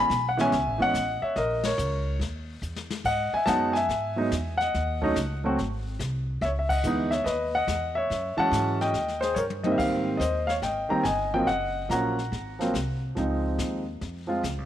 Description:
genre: jazz piano trio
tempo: 142 BPM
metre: 4/4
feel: swing 66% on 8ths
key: Ab major from 9.8 s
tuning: A4 = 439 Hz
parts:
  - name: warm grand piano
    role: melody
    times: 0.0-14.4 s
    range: G#2 to B5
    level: -25 LUFS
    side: equal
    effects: none
  - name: upright bass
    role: bass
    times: 0.0-14.7 s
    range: Gb1 to G#2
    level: -32 LUFS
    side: equal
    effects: none
  - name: jazz brush drum kit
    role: drums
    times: 0.1-14.7 s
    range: brushed snare drum, crash cymbal, hi-hat, kick drum, ride cymbal, snare drum, toms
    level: -37 LUFS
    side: left 4 dB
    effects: none
room: light reverb, small room ambience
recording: 1960s-style stereo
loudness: -24 LUFS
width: side -11 dB against mid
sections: 0.0-9.8 A section; 9.8-14.7 B section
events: band accent 1.6, 6.6; drum fill 2.6-3.1, 9.4-9.8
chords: 0.0 Amaj9; 1.4 A#madd11; 2.2 N.C.; 3.1 G#m7; 4.7 D#m7b5; 5.6 G#; 6.4 C#m7; 8.1 F#m9; 8.9 D#; 9.8 Abmaj7; 11.5 Ebm9; 12.3 Ab9; 13.2 Dbmaj9

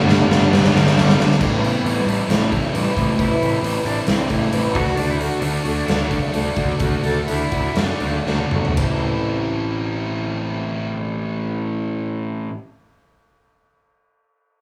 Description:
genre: quiet-loud alternative rock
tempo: 114-135 BPM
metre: 4/4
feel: straight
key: A dorian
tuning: A4 = 440 Hz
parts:
  - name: warm cello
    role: melody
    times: 0.0-8.8 s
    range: A2 to A4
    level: -27 LUFS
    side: equal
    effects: none
  - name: cranked stack guitar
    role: riff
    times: 0.0-1.4 s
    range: G2 to D4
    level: -24 LUFS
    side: equal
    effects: none
  - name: distorted electric guitar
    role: riff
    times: 0.0-12.5 s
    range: G2 to F#4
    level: -28 LUFS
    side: equal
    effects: overdrive
  - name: distorted electric guitar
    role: riff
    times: 0.0-1.4 s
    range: G2 to G3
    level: -24 LUFS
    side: equal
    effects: none
  - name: fuzz picked electric bass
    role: bass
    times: 0.0-12.5 s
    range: G1 to F#2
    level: -25 LUFS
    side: equal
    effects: overdrive
  - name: big rock drum kit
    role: drums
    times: 0.1-8.9 s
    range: crash cymbal, hi-hat, kick drum, ride cymbal, snare drum, toms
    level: -24 LUFS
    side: equal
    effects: none
  - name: fingerpicked old ladder-braced acoustic guitar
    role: arpeggios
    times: 1.4-12.5 s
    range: A2 to F#4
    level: -30 LUFS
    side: equal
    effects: none
room: light reverb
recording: band playing live in one room, small room ambience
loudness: -20 LUFS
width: mono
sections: 0.0-1.4 A section; 1.4-8.8 B section; 8.8-13.0 C section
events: drum fill 0.0-1.4, 8.3-8.8; slowing down 5.0-8.8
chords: 0.0 Gadd9; 1.4 Amadd9; 4.7 D; 8.8 Am

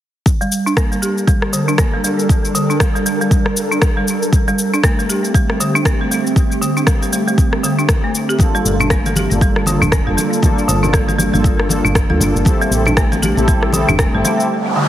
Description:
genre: afro house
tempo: 118 BPM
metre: 4/4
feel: swing 59% on 16ths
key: G dorian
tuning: A4 = 440 Hz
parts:
  - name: ethereal airy pad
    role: sustained chords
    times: 1.1-14.5 s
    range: G3 to Bb4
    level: -22 LUFS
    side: right 1 dB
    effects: ensemble chorus, built-in reverb, sidechain pumping
  - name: electronic kick drum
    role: drums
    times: 0.3-14.1 s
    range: none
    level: -15 LUFS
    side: equal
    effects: none
  - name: electronic shaker and rim click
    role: drums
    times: 0.3-14.5 s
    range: none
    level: -21 LUFS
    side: left 1 dB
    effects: none
  - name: folk marimba with hard mallets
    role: arpeggios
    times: 0.4-14.9 s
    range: D3 to G4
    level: -18 LUFS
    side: right 1 dB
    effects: sidechain pumping, low-pass filter, dub echo
  - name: mellow synth brass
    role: stabs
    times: 8.4-14.5 s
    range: Bb3 to A4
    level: -20 LUFS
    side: left 1 dB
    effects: chorus, phaser, sidechain pumping, dub echo
  - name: congas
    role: percussion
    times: 8.4-14.4 s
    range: none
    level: -23 LUFS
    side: left 1 dB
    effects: none
  - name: woody FM bass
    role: bass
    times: 8.7-14.2 s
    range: D1 to D2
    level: -19 LUFS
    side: equal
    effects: tube saturation, sidechain pumping
  - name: noise sweep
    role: sound effects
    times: 14.6-14.9 s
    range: none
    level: -18 LUFS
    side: right 3 dB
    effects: none
room: moderate recital hall reverb, RT60 1.7 s, digital ambience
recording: heavily compressed radio sound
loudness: -13 LUFS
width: side -12 dB against mid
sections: 0.3-14.9 A section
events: filter sweep on marimba 0.3-14.9; noise sweep 14.6-14.9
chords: 0.3 Gm; 4.3 Am7; 8.4 Gm7; 12.5 Am7

